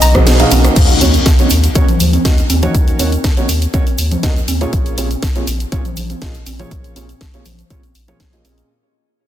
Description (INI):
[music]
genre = progressive house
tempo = 121 BPM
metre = 4/4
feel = straight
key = Eb minor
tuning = A4 = 440 Hz
[part]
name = bright symphonic string section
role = sustained chords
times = 0.0-0.7 s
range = none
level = barely audible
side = none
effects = none
[part]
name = wide unison pluck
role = arpeggios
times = 0.0-0.7 s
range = Bb5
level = -23 LUFS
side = equal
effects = none
[part]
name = round analog bass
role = bass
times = 0.0-8.6 s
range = Bb1 to Eb2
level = -16 LUFS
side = equal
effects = sidechain pumping
[part]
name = house drum kit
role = drums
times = 0.0-8.7 s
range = crash cymbal, hi-hat, ride cymbal, snare drum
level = -19 LUFS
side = left 1 dB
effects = none
[part]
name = egg shaker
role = percussion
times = 0.0-8.7 s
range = none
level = -27 LUFS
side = right 6 dB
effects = none
[part]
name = felt-muted upright piano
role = stabs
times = 0.1-8.7 s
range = Bb2 to F5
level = -20 LUFS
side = right 1 dB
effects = sidechain pumping, low-pass filter, ping-pong delay
[part]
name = electronic kick drum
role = drums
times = 0.1-8.3 s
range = none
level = -14 LUFS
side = equal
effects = none
[part]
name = electronic rim click and congas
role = percussion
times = 0.1-8.6 s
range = none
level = -20 LUFS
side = right 1 dB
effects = soft clipping on snare, sidechain pumping on snare, sidechain pumping on perc
[part]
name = impact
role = sound effects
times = 0.8-2.7 s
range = none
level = -20 LUFS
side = equal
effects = none
[sound]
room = digital ambience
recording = dense, heavily limited modern master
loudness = -11 LUFS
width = side -12 dB against mid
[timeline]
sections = 0.8-8.7 A section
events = kick drops out 0.3-0.8; band accent 0.3; fade-out 0.8-8.7; impact 0.8-2.7; filter sweep on analog synth bass 0.8-8.7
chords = 0.0 Abm7/Cb; 0.8 Ebm7; 4.7 Bbm7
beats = 0.27 | 0.76 1.26 1.75 2.25 | 2.75 3.24 3.74 4.23 | 4.73 5.22 5.72 6.22 | 6.71 7.21 7.70 8.20